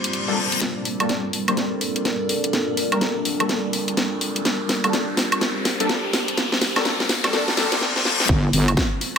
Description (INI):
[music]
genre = bass house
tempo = 125 BPM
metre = 4/4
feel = swing 62% on 16ths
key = G minor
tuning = A4 = 439 Hz
[part]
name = dark analog pad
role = sustained chords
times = 0.0-8.3 s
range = G3 to C5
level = -28 LUFS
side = right 1 dB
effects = chorus, phaser, sidechain pumping
[part]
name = garage drum kit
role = drums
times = 0.0-9.1 s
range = hi-hat, snare drum, woodblock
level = -22 LUFS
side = equal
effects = none
[part]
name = reverse cymbal and riser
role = sound effects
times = 0.0-8.3 s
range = none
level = -27 LUFS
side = left 2 dB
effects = none
[part]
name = granular cloud pad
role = texture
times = 0.0-9.2 s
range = G3 to D5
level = -30 LUFS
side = right 1 dB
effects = built-in reverb, sidechain pumping
[part]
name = orchestra-hit-like synth stab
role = stabs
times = 0.3-7.8 s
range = G3 to C5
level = -27 LUFS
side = left 2 dB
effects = built-in reverb, phaser, sidechain pumping, digital delay
[part]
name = wobble bass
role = bass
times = 8.3-8.8 s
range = G1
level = -18 LUFS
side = equal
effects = chorus, tube saturation, sidechain pumping
[part]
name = electronic kick drum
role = drums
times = 8.3-8.9 s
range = none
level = -22 LUFS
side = equal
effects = none
[sound]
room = moderate plate reverb, RT60 1.9 s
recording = high-pass filter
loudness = -19 LUFS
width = side -7 dB against mid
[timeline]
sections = 0.6-8.3 A section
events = reverse cymbal 0.0-0.6, 7.3-8.3; build-up 0.6-8.3; drum fill 0.6-7.8, 7.8-8.3; riser 0.6-7.8; filter sweep on synth stab 0.6-8.3; filter sweep 0.6-8.3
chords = 0.0 Gmadd9; 8.3 Gm